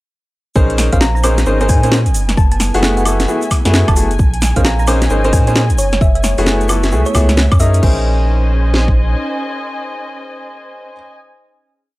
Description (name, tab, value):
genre	UK garage, two-step garage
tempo	132 BPM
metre	4/4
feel	swing 63% on 16ths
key	unclear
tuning	A4 = 437 Hz
part	airy breathy pad	sustained chords	1.2-10.9 s	A3 to C5	-31 LUFS	equal	none
part	clear grand piano	stabs	0.6-10.9 s	A3 to Eb5	-19 LUFS	left 1 dB	tape echo
part	saturated sub bass	bass	0.6-9.2 s	Gb1 to Bb2	-14 LUFS	equal	none
part	house drum kit	drums	0.6-9.0 s	kick drum, snare drum	-14 LUFS	equal	none
part	egg shaker	percussion	0.6-7.8 s	none	-30 LUFS	right 2 dB	none
part	house drum kit	drums	0.7-7.9 s	crash cymbal, hi-hat, snare drum, woodblock	-18 LUFS	equal	none
part	thumb-piano-like synth pluck	melody	0.9-7.8 s	Db5 to Bb5	-23 LUFS	equal	chorus, vintage 12-bit sampler grit, tape echo
part	muted studio string section	texture	0.9-11.1 s	A3 to Ab5	-25 LUFS	equal	sidechain pumping
room	little or no reverb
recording	dry, gritty hardware recording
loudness	-11 LUFS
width	side -18 dB against mid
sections	0.6-7.8 drop; 7.8-11.5 final chord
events	drop 0.6-7.8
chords	0.6 Bbm11; 2.1 Gbm11; 4.2 Bbm11; 5.8 Gbm11; 7.8 Bbm11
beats	| 0.56 1.01 1.47 1.92 | 2.38 2.83 3.28 3.74 | 4.19 4.65 5.10 5.56 | 6.01 6.47 6.92 7.38 | 7.83 8.28 8.74 9.19 | 9.65 10.10 10.56 11.01